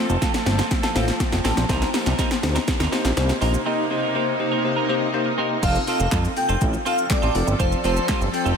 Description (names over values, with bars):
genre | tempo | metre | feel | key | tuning
dance-pop | 122 BPM | 4/4 | straight | F mixolydian | A4 = 442 Hz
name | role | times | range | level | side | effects
bell-like tine electric piano | accompaniment | 0.0-8.5 s | A3 to A5 | -27 LUFS | left 5 dB | analog chorus, sidechain pumping
shimmering ambient pad | sustained chords | 0.0-8.6 s | C3 to A4 | -27 LUFS | equal | chorus, built-in reverb, sidechain pumping
twelve-string electric guitar | riff | 0.0-8.6 s | C4 to Bb4 | -29 LUFS | right 5 dB | wide subtle chorus
fat analog bass | bass | 0.1-8.5 s | F1 to F2 | -22 LUFS | equal | sidechain pumping
deep house drum kit | drums | 0.1-8.6 s | crash cymbal, handclaps, hi-hat, kick drum, shaker, snare drum | -24 LUFS | equal | overdrive
airy dreamy lead | melody | 5.6-8.4 s | C5 to G5 | -24 LUFS | equal | chorus, analog delay
room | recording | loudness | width
moderate huge ambient reverb, RT60 6.4 s | dreamy mix soaked in reverb | -19 LUFS | side -6 dB against mid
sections
0.0-5.6 A section; 5.6-8.6 B section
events
build-up 0.0-5.6; drum fill 0.0-3.7; tine electric piano fill 0.7-1.7; drop 5.6-8.6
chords
0.0 F; 1.7 Cm7; 5.6 F